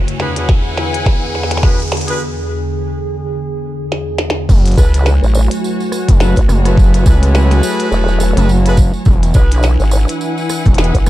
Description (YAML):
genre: glitch hop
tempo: 105 BPM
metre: 4/4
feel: swing 58% on 16ths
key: F# minor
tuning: A4 = 435 Hz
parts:
  - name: warbly tape-like pad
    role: sustained chords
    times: 0.0-11.1 s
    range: E2 to G#5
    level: -21 LUFS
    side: right 1 dB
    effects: chorus, built-in reverb, sidechain pumping
  - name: riser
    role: sound effects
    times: 0.0-2.2 s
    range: none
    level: -26 LUFS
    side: right 1 dB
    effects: none
  - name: clear studio string section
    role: texture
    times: 0.0-11.1 s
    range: E4 to G#5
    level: -24 LUFS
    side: left 3 dB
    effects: sidechain pumping
  - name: glitchy drum kit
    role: drums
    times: 0.1-11.1 s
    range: crash cymbal, hi-hat, rim click, snare drum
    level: -22 LUFS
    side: equal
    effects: none
  - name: bright horn section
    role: stabs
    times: 0.2-10.9 s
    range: D4 to B4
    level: -23 LUFS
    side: left 1 dB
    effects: sidechain pumping, ping-pong delay
  - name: electronic kick drum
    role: drums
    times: 0.5-11.0 s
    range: none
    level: -11 LUFS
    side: equal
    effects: overdrive
  - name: gritty driven synth bass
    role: bass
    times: 4.5-11.1 s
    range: E1 to C#2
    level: -12 LUFS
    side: equal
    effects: tube saturation
  - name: tambourine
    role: percussion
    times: 4.5-11.1 s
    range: none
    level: -30 LUFS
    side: right 6 dB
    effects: none
  - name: vowel-sweep wobble bass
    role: bass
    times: 4.8-11.0 s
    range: E1 to C#2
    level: -12 LUFS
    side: equal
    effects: chorus, tube saturation
room: digital ambience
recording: dark, warm production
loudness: -11 LUFS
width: side -15 dB against mid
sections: 0.0-4.5 A section; 4.5-11.1 B section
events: build-up 0.0-4.5; drum fill 0.0-2.2, 3.9-4.5; riser 0.0-2.2; break 2.2-4.5; drop 4.5-11.1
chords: 0.0 E7; 4.5 F#m11; 9.1 E7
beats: 0.49 1.06 1.64 | 2.21 2.78 3.35 3.92 | 4.49 5.06 5.63 6.21 | 6.78 7.35 7.92 8.49 | 9.06 9.63 10.21 10.78